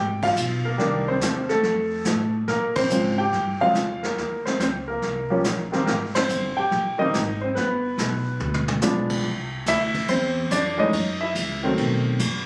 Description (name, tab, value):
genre	jazz piano trio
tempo	142 BPM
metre	4/4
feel	swing 67% on 8ths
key	unclear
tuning	A4 = 440 Hz
part	clear concert grand piano	melody	0.0-12.2 s	Db3 to G5	-25 LUFS	equal	none
part	upright bass	bass	0.0-12.5 s	F#1 to Bb2	-31 LUFS	equal	none
part	vintage brush drum kit	drums	0.2-12.3 s	brushed snare drum, crash cymbal, hi-hat, kick drum, ride cymbal, snare drum, toms	-31 LUFS	equal	none
room	moderate club reverb, RT60 0.7 s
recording	recorded on a phone in the room, club reverb, compression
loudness	-23 LUFS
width	mono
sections	0.0-9.2 A section; 9.2-12.5 B section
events	band accent 0.2, 2.7, 6.1; drum fill 8.4-8.8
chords	0.0 Fm; 0.8 Cm7; 1.6 F; 2.5 Bbm7; 4.2 Eb7(no3); 5.9 Abmaj7; 7.6 G7b9; 9.2 Cadd9; 10.9 F#7(no3); 11.8 B7b9